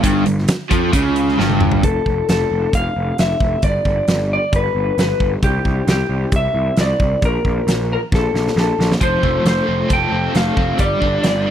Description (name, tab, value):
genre	classic rock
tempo	134 BPM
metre	4/4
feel	straight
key	unclear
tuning	A4 = 441 Hz
part	overdriven electric guitar	riff	0.0-1.8, 9.0-11.5 s	G2 to A4	-20 LUFS	equal	tremolo
part	overdriven electric guitar	riff	0.0-1.8 s	G2 to F3	-19 LUFS	right 2 dB	none
part	fuzz picked electric bass	bass	0.0-11.5 s	F1 to F2	-20 LUFS	equal	overdrive
part	big rock drum kit	drums	0.0-11.3 s	hi-hat, kick drum, snare drum, toms	-19 LUFS	equal	none
part	electric slide guitar	melody	1.8-11.5 s	G4 to G5	-20 LUFS	left 2 dB	none
room	little or no reverb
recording	dry, close 1970s-style studio recording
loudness	-14 LUFS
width	side -10 dB against mid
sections	0.0-1.8 A section; 1.8-11.5 B section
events	drum fill 1.4-1.8, 8.1-9.0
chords	0.0 Fsus2/G; 1.8 F; 3.6 G; 5.4 C; 7.2 N.C.; 9.0 F; 10.8 G5